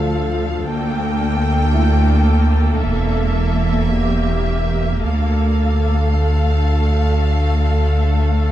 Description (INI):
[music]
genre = cinematic, suspense film score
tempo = 54 BPM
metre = 4/4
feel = straight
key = D minor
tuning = A4 = 441 Hz
[part]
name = warm symphonic violin section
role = melody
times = 0.0-8.5 s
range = E5 to G5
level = -26 LUFS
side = left 3 dB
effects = none
[part]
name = rich symphonic viola section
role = accompaniment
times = 0.0-8.5 s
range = F3 to A4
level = -22 LUFS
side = equal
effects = none
[part]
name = rich symphonic cello section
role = bass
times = 0.0-8.5 s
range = D2 to E2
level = -24 LUFS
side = right 3 dB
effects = none
[part]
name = rich symphonic double bass section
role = bass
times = 0.0-8.5 s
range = E1 to D2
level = -21 LUFS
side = right 2 dB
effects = none
[part]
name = sub bass with octave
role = drone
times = 0.0-8.5 s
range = E1 to D2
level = -18 LUFS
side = left 1 dB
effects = none
[part]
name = felt-muted upright piano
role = texture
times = 0.0-8.5 s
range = E4 to F5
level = -34 LUFS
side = left 3 dB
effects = none
[sound]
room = wet scoring stage reverb, RT60 1.8 s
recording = dark, warm production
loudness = -15 LUFS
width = side -12 dB against mid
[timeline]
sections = 0.0-8.5 A section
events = none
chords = 0.0 Dm; 0.6 Gmadd9/D; 2.8 Edim; 5.0 Dm